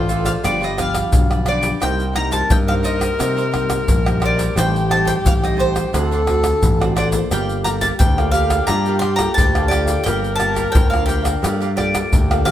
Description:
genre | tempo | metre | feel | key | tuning
samba and choro | 87 BPM | 4/4 | straight | G minor | A4 = 439 Hz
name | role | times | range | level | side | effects
bowl-back mandolin | melody | 0.0-12.5 s | C5 to C6 | -22 LUFS | equal | none
breathy tenor saxophone | second line | 0.0-12.5 s | F4 to Bb4 | -24 LUFS | left 2 dB | none
cavaquinho | accompaniment | 0.0-12.5 s | D4 to G5 | -27 LUFS | right 4 dB | none
nylon-string guitar | accompaniment | 0.0-12.5 s | G2 to A4 | -26 LUFS | left 2 dB | none
picked electric bass | bass | 0.0-12.5 s | G1 to C3 | -21 LUFS | right 1 dB | none
tube shaker, pandeiro, surdo and tamborim | percussion | 0.1-12.5 s | none | -19 LUFS | equal | none
room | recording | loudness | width
moderate stone room reverb, RT60 1.1 s | band playing live in one room | -15 LUFS | side -11 dB against mid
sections
0.0-12.5 A section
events
none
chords
0.4 G7; 1.8 Cm7; 4.6 Am7b5; 5.9 D7; 7.3 Gm9

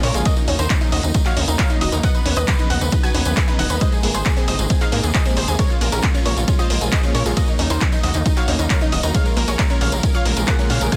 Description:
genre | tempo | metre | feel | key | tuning
uplifting trance | 135 BPM | 4/4 | straight | Bb minor | A4 = 440 Hz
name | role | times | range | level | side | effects
unison pluck | melody | 0.0-11.0 s | Db4 to Ab5 | -29 LUFS | equal | subtle chorus, sidechain pumping, digital delay
clear grand piano | second line | 0.0-11.0 s | Eb5 to Ab6 | -32 LUFS | equal | sidechain pumping, digital delay
warm studio string section | sustained chords | 0.0-11.0 s | C3 to F4 | -31 LUFS | equal | sidechain pumping
analog pluck | arpeggios | 0.0-11.0 s | Ab3 to B4 | -29 LUFS | equal | chorus, sidechain pumping, digital delay
gritty driven synth bass | bass | 0.0-10.9 s | Eb1 to Bb2 | -24 LUFS | equal | sidechain pumping
punchy analog drum machine | drums | 0.0-11.0 s | handclaps, hi-hat, ride cymbal | -28 LUFS | equal | sidechain pumping on hats, sidechain pumping on cymbals
tambourine | percussion | 0.2-11.0 s | none | -34 LUFS | equal | none
electronic kick drum | drums | 0.3-11.0 s | none | -21 LUFS | equal | none
room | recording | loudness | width
little or no reverb | dense, heavily limited modern master | -18 LUFS | mono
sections
0.0-11.0 A section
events
none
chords
0.3 Ebm7; 2.0 Badd9/D#; 3.8 Abadd9; 5.6 Bbm7; 7.4 Ebm7; 9.1 Bbm7

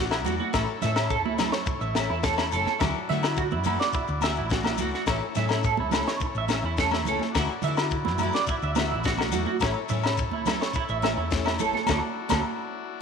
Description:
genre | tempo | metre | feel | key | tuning
highlife guitar band | 106 BPM | 4/4 | straight | A major | A4 = 439 Hz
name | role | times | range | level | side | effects
picked steel-string acoustic guitar | accompaniment | 0.0-12.4 s | E3 to A4 | -33 LUFS | left 12 dB | none
overdriven combo organ | sustained chords | 0.0-13.0 s | E4 to D5 | -36 LUFS | left 8 dB | none
electric guitar through a small old amp | arpeggios | 0.0-12.4 s | E4 to E5 | -29 LUFS | right 9 dB | phaser, slapback echo
hollow-body short-scale fingered electric bass | bass | 0.0-12.4 s | F#1 to D3 | -30 LUFS | equal | none
tight funk drum kit | drums | 0.1-12.4 s | kick drum, snare drum | -30 LUFS | left 3 dB | none
agogo bells | percussion | 0.1-12.4 s | none | -33 LUFS | left 9 dB | none
congas | percussion | 0.2-12.4 s | none | -34 LUFS | right 11 dB | none
shekere | percussion | 0.3-12.4 s | none | -40 LUFS | left 6 dB | none
room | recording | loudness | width
moderate echo chamber reverb, RT60 1.9 s, small room reverb | 1960s-style stereo with parts hard left and right | -23 LUFS | side -6 dB against mid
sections
0.0-13.0 A section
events
band accent 11.9-13.0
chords
0.0 Dadd9; 0.5 A; 2.8 Dadd9; 5.1 A; 7.3 Dadd9; 9.6 A; 11.9 Dadd9

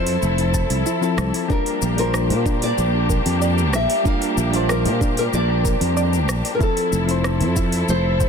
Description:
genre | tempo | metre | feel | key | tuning
sunset chillout | 94 BPM | 4/4 | straight | unclear | A4 = 442 Hz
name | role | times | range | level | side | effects
nylon-string guitar | melody | 0.0-8.3 s | A4 to F5 | -24 LUFS | left 1 dB | tape echo, shimmer reverb
soft electric-piano-like synth keys | accompaniment | 0.0-8.3 s | F3 to C5 | -27 LUFS | moving between left 8 dB and right 8 dB | chorus, auto-pan, ping-pong delay, shimmer reverb
muted studio string section | sustained chords | 0.0-8.3 s | F3 to A4 | -26 LUFS | left 2 dB | shimmer reverb
soft round pluck | arpeggios | 0.0-8.3 s | D4 to A5 | -31 LUFS | right 1 dB | none
sustaining fretless electric bass | bass | 0.0-8.3 s | F1 to Bb2 | -20 LUFS | equal | analog chorus
smooth R&B drum kit | drums | 0.1-8.3 s | hi-hat, rim click, shaker | -28 LUFS | left 1 dB | soft clipping on snare
electronic kick drum | drums | 0.5-8.3 s | none | -22 LUFS | right 1 dB | none
room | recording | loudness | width
light reverb | dense, heavily limited modern master | -17 LUFS | side -6 dB against mid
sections
0.0-8.3 A section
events
none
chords
0.0 Fmaj7; 1.5 Bb6; 6.6 Fmaj7

